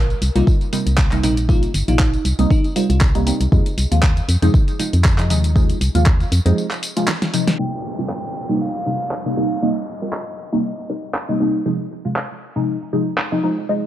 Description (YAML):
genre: deep house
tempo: 118 BPM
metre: 4/4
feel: swing 54% on 16ths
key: C minor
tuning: A4 = 442 Hz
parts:
  - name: bell-like FM electric piano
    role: melody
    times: 0.0-3.0 s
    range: Eb4 to Bb4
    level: -25 LUFS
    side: equal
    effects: chorus
  - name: filtered dub chord stab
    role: stabs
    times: 0.0-13.9 s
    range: C3 to F4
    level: -21 LUFS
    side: equal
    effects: phaser, lush chorus, sidechain pumping, analog delay
  - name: organ-like FM bass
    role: bass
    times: 0.0-6.5 s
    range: G1 to F2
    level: -17 LUFS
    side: equal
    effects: sidechain pumping
  - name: deep house drum kit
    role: drums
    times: 0.1-13.3 s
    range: handclaps, hi-hat, snare drum, tambourine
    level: -24 LUFS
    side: equal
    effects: none
  - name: electronic kick drum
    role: drums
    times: 0.5-6.2 s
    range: none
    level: -16 LUFS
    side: equal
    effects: none
  - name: vibraphone with soft mallets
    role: melody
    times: 7.6-11.4 s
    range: Eb5 to G5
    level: -30 LUFS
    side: equal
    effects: analog delay
  - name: downlifter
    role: sound effects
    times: 7.6-11.7 s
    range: none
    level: -32 LUFS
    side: equal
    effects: none
room: digital ambience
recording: cassette tape, low-pass filter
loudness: -16 LUFS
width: side -12 dB against mid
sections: 0.0-7.6 A section; 7.6-13.9 B section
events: break 6.6-7.6; drum fill 7.1-7.6; filter sweep on synth stab 7.6-13.9; filter sweep 7.6-13.9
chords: 0.0 Cm7; 3.5 Fm7; 7.6 Cm7; 11.7 Fm7